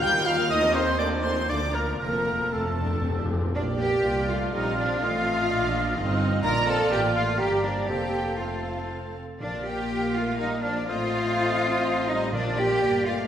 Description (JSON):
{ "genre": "quick classical-period movement for symphony orchestra", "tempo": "115-128 BPM", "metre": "3/4", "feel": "rubato", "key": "Bb major", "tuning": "A4 = 442 Hz", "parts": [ { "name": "rich studio violin section", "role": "melody", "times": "0.0-13.3 s", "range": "D5 to G6", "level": "-37 LUFS", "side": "left 1 dB", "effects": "none" }, { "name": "mellow clarinet", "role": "second line", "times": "0.0-13.3 s", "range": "A4 to G5", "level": "-33 LUFS", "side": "equal", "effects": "none" }, { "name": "mellow silver concert flute", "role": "second line", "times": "0.0-13.3 s", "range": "A4 to Bb5", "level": "-34 LUFS", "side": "left 1 dB", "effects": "none" }, { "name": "rich studio violin section", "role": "second line", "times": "0.0-13.3 s", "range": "A3 to Bb5", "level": "-36 LUFS", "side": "left 2 dB", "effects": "none" }, { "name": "warm oboe", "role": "second line", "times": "0.0-13.3 s", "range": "A4 to Bb5", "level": "-32 LUFS", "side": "right 1 dB", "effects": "none" }, { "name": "warm studio viola section", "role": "accompaniment", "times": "0.0-13.3 s", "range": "D3 to A4", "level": "-32 LUFS", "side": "equal", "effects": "none" }, { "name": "dark French horn section", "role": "sustained chords", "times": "0.0-13.3 s", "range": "F3 to G4", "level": "-32 LUFS", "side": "left 2 dB", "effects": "none" }, { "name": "clear trumpet section", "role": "stabs", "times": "0.0-3.3 s", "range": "A4 to G5", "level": "-30 LUFS", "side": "right 1 dB", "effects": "none" }, { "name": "rich studio double bass section", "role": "bass", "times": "0.0-13.3 s", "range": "F1 to Eb2", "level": "-32 LUFS", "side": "right 2 dB", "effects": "none" }, { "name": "rich symphonic cello section", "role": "bass", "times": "0.0-13.1 s", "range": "D2 to Bb4", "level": "-29 LUFS", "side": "right 1 dB", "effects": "none" }, { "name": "timpani", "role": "percussion", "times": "2.0-3.5, 9.4-10.1, 12.3-12.8 s", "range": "F2 to Bb2", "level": "-32 LUFS", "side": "left 1 dB", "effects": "none" } ], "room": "wet scoring stage reverb, RT60 1.6 s", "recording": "none", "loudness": "-22 LUFS", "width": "side -9 dB against mid", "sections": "0.0-3.5 A section; 3.5-13.3 B section", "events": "timpani fill 2.0-3.5", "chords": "0.0 Cm/Eb; 0.5 F7/Eb; 1.5 Bb/D; 2.0 F; 3.5 Bb; 5.0 F7/A; 6.4 Bb; 7.4 Gm; 7.9 F; 9.4 Bb; 10.9 F7/A; 12.3 Bb" }